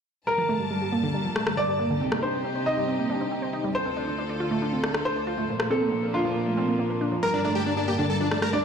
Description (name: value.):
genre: uplifting trance.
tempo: 138 BPM.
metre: 4/4.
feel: straight.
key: unclear.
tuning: A4 = 440 Hz.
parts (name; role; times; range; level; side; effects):
clear baby grand piano; second line; 0.3-8.6 s; F4 to Eb5; -28 LUFS; equal; dub echo.
rich chamber string section; sustained chords; 0.3-8.6 s; C2 to A5; -30 LUFS; left 1 dB; none.
wide unison pluck; arpeggios; 0.3-8.6 s; D3 to D5; -28 LUFS; right 2 dB; ping-pong delay.
electronic rim click; drums; 1.4-2.2, 4.8-5.7, 8.3-8.5 s; none; -31 LUFS; left 1 dB; overdrive, small room ambience.
big supersaw lead; melody; 7.2-8.6 s; D4 to Bb4; -26 LUFS; left 1 dB; ping-pong delay.
room: light reverb, small room ambience.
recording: played on a big sound system in a bare room, large studio reverb.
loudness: -23 LUFS.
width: side -6 dB against mid.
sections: 0.3-8.6 A section.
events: filter sweep on synth pluck 0.3-8.6.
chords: 0.3 Gmadd9; 2.0 Cm; 3.7 Dm; 5.5 Bb; 7.2 Gmadd9.